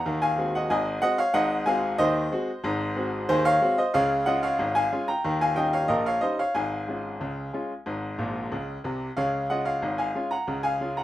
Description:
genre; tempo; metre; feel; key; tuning
ragtime piano; 92 BPM; 2/4; straight; Db major; A4 = 439 Hz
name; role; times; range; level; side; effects
bright grand piano; solo; 0.0-11.0 s; Ab1 to Bb5; -23 LUFS; equal; none
room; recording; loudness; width
wet studio reverb, RT60 0.6 s; rough home demo mix, faint mains hum; -23 LUFS; side -14 dB against mid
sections
0.0-11.0 A section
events
grand piano fill 8.2-9.2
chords
0.0 Ab7; 3.9 Db; 5.2 Eb7; 6.5 Db/Ab; 7.9 Ab; 9.2 Db

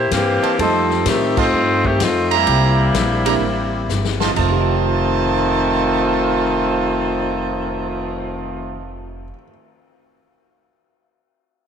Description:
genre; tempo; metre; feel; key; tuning
jazz, big band swing; 127 BPM; 4/4; swing 67% on 8ths; F mixolydian; A4 = 444 Hz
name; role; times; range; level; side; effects
clear saxophone section; melody; 0.0-8.9 s; Eb3 to A4; -18 LUFS; left 2 dB; tape echo
upright bass; bass; 0.0-9.3 s; F1 to A2; -23 LUFS; equal; none
swinging big-band drum kit; drums; 0.1-8.1 s; crash cymbal, cymbal swell, hi-hat, kick drum, ride cymbal, snare drum; -25 LUFS; left 6 dB; none
clear trumpet section; stabs; 0.4-9.0 s; F4 to Bb5; -22 LUFS; right 11 dB; none
warm grand piano; accompaniment; 0.6-9.5 s; F2 to G4; -27 LUFS; right 12 dB; none
room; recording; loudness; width
moderate echo chamber reverb, RT60 1.9 s, small room ambience; 1960s-style stereo with parts hard left and right; -15 LUFS; side -7 dB against mid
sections
0.0-4.4 A section; 4.4-8.2 B section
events
band accent 1.3; drum fill 3.9-4.4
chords
0.0 C7; 0.6 F7; 2.5 C7; 4.4 F7

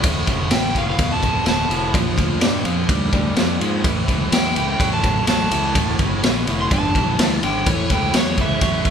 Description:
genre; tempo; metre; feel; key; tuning
blues rock power trio and southern rock; 126 BPM; 4/4; straight; D minor; A4 = 439 Hz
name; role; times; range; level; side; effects
overdriven electric guitar; riff; 0.0-8.9 s; D2 to G3; -23 LUFS; equal; none
growling fingered electric bass; bass; 0.0-8.9 s; D1 to Ab2; -24 LUFS; equal; overdrive
raw garage drum kit; drums; 0.0-8.9 s; kick drum, ride cymbal, snare drum; -19 LUFS; equal; none
overdriven slide guitar; melody; 0.5-8.9 s; C#5 to C6; -23 LUFS; right 1 dB; none
room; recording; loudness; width
light reverb; band playing live in one room; -16 LUFS; side -7 dB against mid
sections
0.0-8.9 A section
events
none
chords
0.0 Dm; 1.9 Bb; 3.8 A; 5.8 Dm; 6.7 Gmadd9; 7.7 A

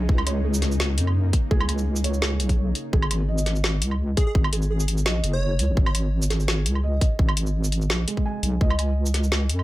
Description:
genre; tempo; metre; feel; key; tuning
half-time drum and bass; 169 BPM; 4/4; swing 54% on 16ths, half-time; G# minor; A4 = 440 Hz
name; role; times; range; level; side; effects
bowed-like drone; sustained chords; 0.0-2.9 s; C#3 to D#4; -34 LUFS; equal; built-in reverb, sidechain pumping
felt-muted upright piano; arpeggios; 0.0-9.6 s; G#3 to G#5; -34 LUFS; right 3 dB; digital delay
deep soft wobble bass; bass; 0.0-9.6 s; F#1 to F#2; -22 LUFS; equal; chorus
electronic kick drum; drums; 0.1-8.7 s; none; -21 LUFS; equal; none
drum and bass drum kit; drums; 0.2-9.6 s; hi-hat, shaker, snare drum, woodblock; -27 LUFS; equal; none
plucky unison lead; melody; 4.2-5.7 s; G#4 to C#5; -34 LUFS; equal; digital delay
room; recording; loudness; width
little or no reverb; none; -20 LUFS; side -16 dB against mid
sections
0.0-2.9 A section; 2.9-9.6 A section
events
drop 0.0-2.9, 2.9-9.6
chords
0.0 C#5; 2.9 G#5; 8.6 C#5

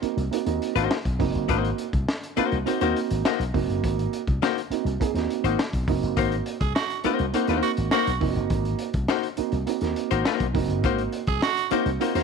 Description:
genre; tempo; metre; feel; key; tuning
funk; 103 BPM; 4/4; straight; Ab mixolydian; A4 = 443 Hz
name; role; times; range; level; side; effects
dark upright piano; stabs; 0.0-12.2 s; Bb3 to Ab4; -27 LUFS; right 15 dB; none
slap bass with an envelope filter; bass; 0.0-12.2 s; F1 to Eb2; -27 LUFS; left 1 dB; none
crunchy breakbeat drum kit; drums; 0.0-12.2 s; hi-hat, kick drum, snare drum; -29 LUFS; left 1 dB; none
archtop guitar, miked and amplified; accompaniment; 0.8-12.2 s; Bb3 to C5; -25 LUFS; left 16 dB; none
raspy tenor saxophone; second line; 6.6-11.7 s; Gb4 to Ab4; -27 LUFS; right 13 dB; none
room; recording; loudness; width
light reverb; 1960s-style stereo with parts hard left and right; -22 LUFS; side -5 dB against mid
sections
0.0-12.2 A section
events
none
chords
0.0 Ab9

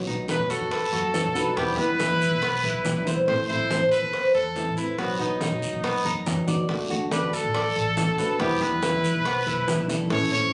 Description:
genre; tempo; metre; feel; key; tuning
latin, Cuban son and guajira; 141 BPM; 4/4; straight; E harmonic minor; A4 = 440 Hz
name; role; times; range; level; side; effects
flamenco guitar; accompaniment; 0.0-10.5 s; B2 to F#4; -32 LUFS; equal; none
Cuban tres; arpeggios; 0.1-10.5 s; B3 to D5; -30 LUFS; equal; none
upright bass; bass; 0.1-10.5 s; A1 to E3; -34 LUFS; equal; none
bongos; percussion; 0.1-10.5 s; none; -38 LUFS; equal; none
congas; percussion; 0.1-10.5 s; none; -34 LUFS; equal; none
bright trumpet; melody; 0.3-10.5 s; D#4 to C#5; -28 LUFS; equal; none
guiro; percussion; 0.3-10.5 s; none; -39 LUFS; equal; none
room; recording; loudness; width
light reverb; recorded on a phone in the room, club reverb, nothing above 10.7 kHz; -24 LUFS; mono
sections
0.0-10.5 A section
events
none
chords
0.0 B; 1.6 Em; 3.3 Am; 5.0 B; 6.7 D; 8.4 Em

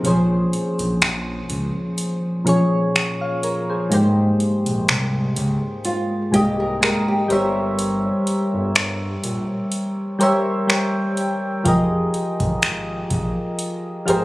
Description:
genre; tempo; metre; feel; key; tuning
contemporary R&B; 62 BPM; 4/4; swing 54% on 16ths; unclear; A4 = 440 Hz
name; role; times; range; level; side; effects
soft electric-piano-like synth keys; accompaniment; 0.0-14.2 s; Ab2 to G5; -20 LUFS; equal; chorus
smooth synth bass; bass; 0.0-14.2 s; F1 to Db2; -25 LUFS; equal; none
booming analog drum machine; drums; 0.0-14.2 s; finger snaps, hi-hat, kick drum; -21 LUFS; equal; none
nylon-string guitar; arpeggios; 5.9-7.5 s; F4 to Bb4; -25 LUFS; right 1 dB; ping-pong delay
room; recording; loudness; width
light reverb; recorded on a phone in the room, studio reverb, compression; -18 LUFS; side -19 dB against mid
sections
0.0-14.2 A section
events
break 0.0-11.7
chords
0.0 Bbm9; 3.9 Abmaj9; 7.3 C7b9/G; 11.7 Fm11

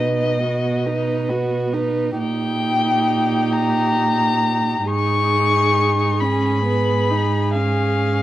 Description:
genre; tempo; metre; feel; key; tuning
classical, slow romantic movement for string quartet; 45 BPM (dotted quarters); 12/8; rubato; unclear; A4 = 438 Hz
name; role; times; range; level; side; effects
dark violin; melody; 0.0-8.2 s; D#5 to C#6; -21 LUFS; left 4 dB; none
dark violin; second line; 0.0-8.2 s; F#4 to B4; -24 LUFS; left 1 dB; none
warm viola; accompaniment; 0.0-8.2 s; B3 to D#4; -24 LUFS; right 5 dB; none
dark cello; bass; 0.0-8.2 s; G#2 to B2; -22 LUFS; right 2 dB; none
room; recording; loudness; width
light reverb; worn, warbling old tape, cassette tape, warbly pitch drift; -17 LUFS; side -13 dB against mid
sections
0.0-8.2 A section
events
none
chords
0.0 B; 2.2 D#/A#; 4.9 G#m; 7.5 C#/G#

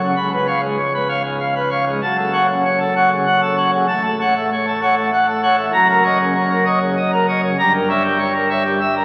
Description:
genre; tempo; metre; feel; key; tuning
classical, organ toccata; 97 BPM; 3/4; straight; F# minor; A4 = 440 Hz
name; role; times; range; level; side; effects
pipe organ, plenum; solo; 0.0-9.0 s; C#1 to B5; -17 LUFS; equal; none
room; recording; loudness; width
wet church reverb, RT60 3.4 s; very old 78 rpm record, vinyl crackle; -17 LUFS; mono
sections
0.0-9.0 A section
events
none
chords
0.2 C#7; 2.0 F#m; 3.9 F#m/A; 5.7 Ebm7/Gb; 7.6 Gdim7

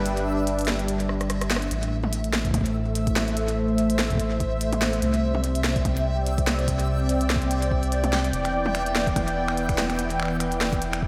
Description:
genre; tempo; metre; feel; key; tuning
IDM; 145 BPM; 4/4; swing 56% on 16ths; A minor; A4 = 440 Hz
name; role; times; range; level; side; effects
warm analog pad; sustained chords; 0.0-11.1 s; A2 to G5; -28 LUFS; equal; chorus, vintage 12-bit sampler grit
round analog bass; bass; 0.0-11.1 s; E1 to C2; -30 LUFS; equal; none
backwards swelling texture; texture; 0.0-11.1 s; E5; -38 LUFS; equal; built-in reverb, subtle chorus
glitchy drum kit; drums; 0.1-11.0 s; finger snaps, hi-hat, rim click, snare drum, toms; -31 LUFS; equal; studio reverb, delay
electronic kick drum; drums; 2.4-11.1 s; none; -30 LUFS; equal; studio reverb
room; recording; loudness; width
wet lush hall reverb, RT60 1.7 s; dreamy mix soaked in reverb; -24 LUFS; mono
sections
0.0-11.1 A section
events
break 0.1-1.7; drum fill 1.1-1.7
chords
0.0 G; 1.7 Am; 5.0 Csus2; 8.3 Em7

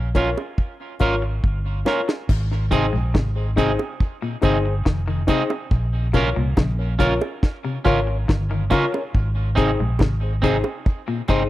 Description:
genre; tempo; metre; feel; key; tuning
roots reggae; 70 BPM; 4/4; straight; Ab major; A4 = 442 Hz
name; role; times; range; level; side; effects
vintage muted fingered electric bass; bass; 0.0-11.5 s; F1 to C2; -22 LUFS; equal; none
reed electric piano; stabs; 0.1-11.5 s; Eb4 to Db5; -24 LUFS; left 5 dB; overdrive
deep reggae drum kit; drums; 0.1-11.5 s; crash cymbal, hi-hat, kick drum, snare drum; -20 LUFS; equal; tape echo
electric guitar at the edge of break-up; accompaniment; 0.2-11.4 s; C4 to Bb4; -26 LUFS; right 4 dB; spring reverb, tape echo
bongos; percussion; 0.2-10.8 s; none; -28 LUFS; right 5 dB; none
electric guitar at the edge of break-up; arpeggios; 2.7-11.4 s; Ab2 to Eb3; -28 LUFS; left 4 dB; spring reverb
room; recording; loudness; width
small room ambience; dry, close 1970s-style studio recording; -19 LUFS; side -15 dB against mid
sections
0.0-2.3 A section; 2.3-11.5 B section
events
drum fill 1.4-2.3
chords
0.0 Bbm; 2.3 Ab; 5.7 Bbm; 9.1 Ab

